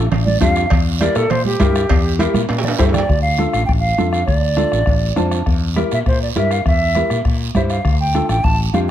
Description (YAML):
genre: latin, cumbia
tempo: 202 BPM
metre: 4/4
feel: straight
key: D minor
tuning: A4 = 442 Hz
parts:
  - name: mellow electric guitar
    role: accompaniment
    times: 0.0-8.9 s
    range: D4 to A5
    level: -22 LUFS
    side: left 2 dB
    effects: none
  - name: fretless electric bass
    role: bass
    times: 0.0-8.9 s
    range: A1 to Bb2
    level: -19 LUFS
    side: equal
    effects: none
  - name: bombo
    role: percussion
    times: 0.1-8.9 s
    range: none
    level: -20 LUFS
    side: left 2 dB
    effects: none
  - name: congas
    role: percussion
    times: 0.1-8.9 s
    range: none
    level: -24 LUFS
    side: right 4 dB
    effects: none
  - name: cowbell and timbales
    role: percussion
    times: 0.1-3.1 s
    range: none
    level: -26 LUFS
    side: right 5 dB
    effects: none
  - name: guiro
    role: percussion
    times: 0.1-8.9 s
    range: none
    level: -31 LUFS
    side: right 8 dB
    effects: none
  - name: hollow concert flute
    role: melody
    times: 0.3-8.9 s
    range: G4 to A5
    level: -20 LUFS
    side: right 2 dB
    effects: plate reverb
room: light reverb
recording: dark, warm production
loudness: -14 LUFS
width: side -11 dB against mid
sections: 0.0-3.1 A section; 3.1-8.9 B section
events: flute solo 0.0-3.1; drum fill 2.3-3.1; clean electric guitar fill 2.5-3.1, 5.0-5.5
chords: 0.0 Dm; 0.7 Edim; 3.1 Dm; 5.5 Edim; 7.8 Dm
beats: 0.12 0.42 | 0.72 1.01 1.31 1.60 | 1.90 2.20 2.50 2.79 | 3.09 3.39 3.68 3.98 | 4.28 4.58 4.87 5.17 | 5.47 5.77 6.06 6.36 | 6.66 6.96 7.25 7.55 | 7.85 8.15 8.44 8.74